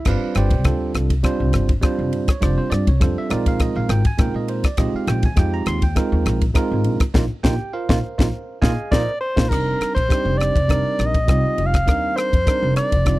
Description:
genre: electric jazz fusion.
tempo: 102 BPM.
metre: 4/4.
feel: swing 53% on 16ths.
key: F dorian.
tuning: A4 = 440 Hz.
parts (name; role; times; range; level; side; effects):
bell-like tine electric piano; accompaniment; 0.0-13.2 s; G3 to C6; -24 LUFS; right 3 dB; none.
upright bass; bass; 0.1-13.2 s; F1 to Bb2; -21 LUFS; equal; none.
crisp fusion drum kit; drums; 0.1-13.2 s; crash cymbal, kick drum, ride cymbal, rim click, snare drum; -19 LUFS; equal; none.
warm soprano saxophone; melody; 8.9-13.2 s; Bb4 to F5; -21 LUFS; equal; none.
room: small room ambience.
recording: dry, close 1970s-style studio recording.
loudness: -17 LUFS.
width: side -18 dB against mid.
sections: 0.0-9.5 A section; 9.5-13.2 B section.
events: band accent 7.1-9.5; drum fill 8.9-9.5.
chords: 0.0 G9sus4; 3.3 Bb9sus4; 9.5 F13sus4.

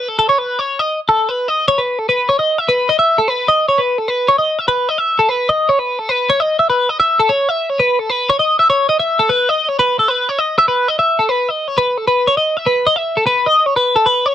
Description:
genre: rock.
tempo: 150 BPM.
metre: 5/4.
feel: straight.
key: unclear.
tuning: A4 = 440 Hz.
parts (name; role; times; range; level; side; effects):
twelve-string electric guitar; solo; 0.0-14.3 s; A4 to E5; -12 LUFS; equal; wide subtle chorus.
room: light reverb.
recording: dark, warm production.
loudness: -13 LUFS.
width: side -10 dB against mid.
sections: 0.0-1.3 A section; 1.3-14.3 B section.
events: none.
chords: none.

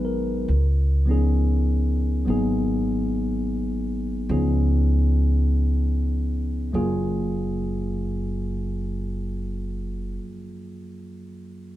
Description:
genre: jazz ballad.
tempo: 44-70 BPM.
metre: 4/4.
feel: swing 69% on 8ths.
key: F# major.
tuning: A4 = 442 Hz.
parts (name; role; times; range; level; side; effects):
tine electric piano; accompaniment; 0.0-11.8 s; F#2 to B4; -26 LUFS; left 1 dB; none.
upright bass; bass; 0.0-10.2 s; F#1 to C#2; -23 LUFS; equal; none.
room: light reverb.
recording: heard from further back in the room.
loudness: -21 LUFS.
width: side -14 dB against mid.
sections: 0.0-6.8 A section; 6.8-11.8 B section.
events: slowing down 0.0-6.8.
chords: 0.5 C#9; 2.3 G#m9; 4.3 C#9; 6.8 F#maj9.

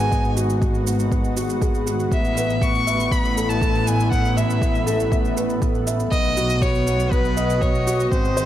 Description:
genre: piano and strings electronica.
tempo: 120 BPM.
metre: 4/4.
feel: straight.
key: unclear.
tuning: A4 = 440 Hz.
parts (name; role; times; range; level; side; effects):
warm violin; melody; 0.0-8.5 s; B4 to C#6; -24 LUFS; left 1 dB; ping-pong delay.
lush unison pad; sustained chords; 0.0-8.5 s; A2 to D#5; -27 LUFS; equal; chorus, sidechain pumping.
felt-muted upright piano; riff; 0.0-8.5 s; B3 to E5; -24 LUFS; equal; ping-pong delay.
muted symphonic double bass section; bass; 0.0-8.5 s; G#1 to B1; -24 LUFS; equal; sidechain pumping.
shaker; drums; 0.0-8.5 s; none; -34 LUFS; right 6 dB; overdrive.
electronic kick drum; drums; 0.1-8.2 s; none; -22 LUFS; equal; overdrive.
room: light reverb, small room ambience.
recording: none.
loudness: -18 LUFS.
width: side -12 dB against mid.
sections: 0.0-8.5 A section.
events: none.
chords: 0.0 G#m7; 2.1 Asus2; 6.1 B.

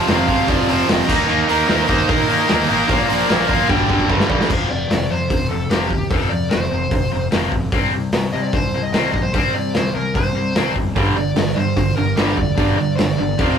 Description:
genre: hard rock.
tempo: 149 BPM.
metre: 4/4.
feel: straight.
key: unclear.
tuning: A4 = 440 Hz.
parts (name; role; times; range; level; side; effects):
dark smooth lead guitar; melody; 0.0-13.6 s; G4 to G5; -24 LUFS; equal; overdrive.
cranked stack guitar; riff; 0.0-4.5, 11.0-13.6 s; F2 to Eb4; -20 LUFS; right 6 dB; overdrive.
distorted electric guitar; riff; 0.0-13.6 s; F2 to Eb4; -21 LUFS; left 6 dB; distortion.
heavy high-gain guitar; riff; 0.0-4.5 s; F2 to Eb4; -24 LUFS; equal; distortion.
fuzz fingered electric bass; bass; 0.1-13.6 s; F1 to C3; -25 LUFS; equal; overdrive.
raw garage drum kit; drums; 0.1-13.5 s; crash cymbal, hi-hat, kick drum, snare drum; -20 LUFS; equal; none.
room: moderate studio reverb, RT60 0.5 s.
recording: rough rehearsal-room recording.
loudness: -15 LUFS.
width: side -7 dB against mid.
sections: 0.0-4.5 A section; 4.5-13.6 B section.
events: drum fill 3.7-4.5.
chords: 0.0 F5; 1.1 Eb5; 2.9 Bb; 3.7 Gm; 4.5 F5; 7.7 C5; 11.0 G5.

